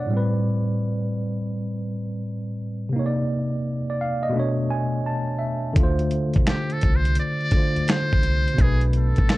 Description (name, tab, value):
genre	lo-fi hip hop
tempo	85 BPM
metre	4/4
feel	swing 66% on 16ths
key	unclear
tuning	A4 = 442 Hz
part	tine electric piano	accompaniment	0.0-9.4 s	A2 to A5	-23 LUFS	equal	medium stereo tremolo, cassette tape, low-pass filter
part	upright bass	bass	5.8-9.3 s	A1 to D2	-24 LUFS	equal	none
part	dusty soul sampler-style drum kit	drums	5.8-9.4 s	finger snaps, hi-hat, kick drum, snare drum	-20 LUFS	equal	none
part	trumpet with metal mute	melody	6.5-9.4 s	G4 to D5	-27 LUFS	equal	low-pass filter
room	light reverb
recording	cassette tape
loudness	-21 LUFS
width	side -18 dB against mid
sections	0.0-5.8 A section; 5.8-9.4 B section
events	none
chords	0.1 Am9; 2.9 Cm9; 4.3 Bm9; 5.8 Dm7; 8.6 Bm7